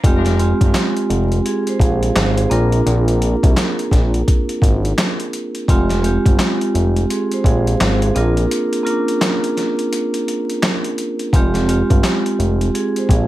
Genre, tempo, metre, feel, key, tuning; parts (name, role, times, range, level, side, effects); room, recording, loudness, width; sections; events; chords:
hip hop, boom-bap hip-hop; 85 BPM; 4/4; swing 60% on 16ths; F dorian; A4 = 438 Hz
vibraphone with medium mallets; accompaniment; 0.0-13.3 s; Ab3 to F5; -18 LUFS; right 1 dB; cassette tape, high-pass filter, low-pass filter
fat analog bass; bass; 0.0-13.3 s; F1 to C2; -18 LUFS; equal
boom bap sampler-style drum kit; drums; 0.0-13.3 s; handclaps, hi-hat, kick drum, snare drum; -18 LUFS; equal
light reverb; vinyl crackle; -14 LUFS; side -15 dB against mid
0.0-13.3 A section
break 8.5-11.3
0.0 Fmadd9; 2.5 Bb; 5.7 Fmadd9; 8.2 Bb; 11.3 Fmadd9